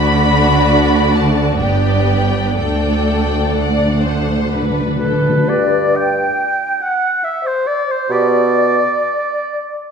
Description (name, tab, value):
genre	classical, slow romantic movement for symphony orchestra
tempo	60-73 BPM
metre	3/4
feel	rubato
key	G major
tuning	A4 = 440 Hz
part	warm symphonic violin section	melody	0.0-5.0 s	F#5 to B5	-21 LUFS	left 3 dB	none
part	rich symphonic violin section	second line	0.0-5.5 s	F#4 to D5	-19 LUFS	left 3 dB	none
part	warm symphonic viola section	accompaniment	0.0-5.2 s	A3 to D4	-21 LUFS	right 1 dB	none
part	rich symphonic double bass section	bass	0.0-5.3 s	G1 to D2	-18 LUFS	right 2 dB	none
part	warm symphonic cello section	bass	0.0-5.3 s	D2 to D3	-20 LUFS	right 2 dB	none
part	timpani	percussion	2.6-5.5 s	D3	-22 LUFS	left 1 dB	none
part	clear oboe	second line	5.0-9.8 s	B4 to G5	-18 LUFS	right 2 dB	none
part	mellow hollow silver concert flute	second line	5.0-9.8 s	B4 to G5	-20 LUFS	left 2 dB	none
part	clear clarinet	second line	5.5-8.4 s	G4 to B4	-23 LUFS	right 1 dB	none
part	warm bassoon	accompaniment	5.5-8.8 s	G2 to B2	-18 LUFS	right 1 dB	none
room	wet recital hall reverb, RT60 1.4 s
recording	none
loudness	-13 LUFS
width	side -6 dB against mid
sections	0.0-5.5 A section; 5.5-9.9 B section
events	timpani fill 2.6-5.5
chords	0.0 D; 1.6 G; 2.6 D; 5.5 G5; 8.1 G/B (rootless)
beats	0.68 1.59 | 2.57 3.57 4.52 | 5.49 6.40 7.25 | 8.10 8.96 9.80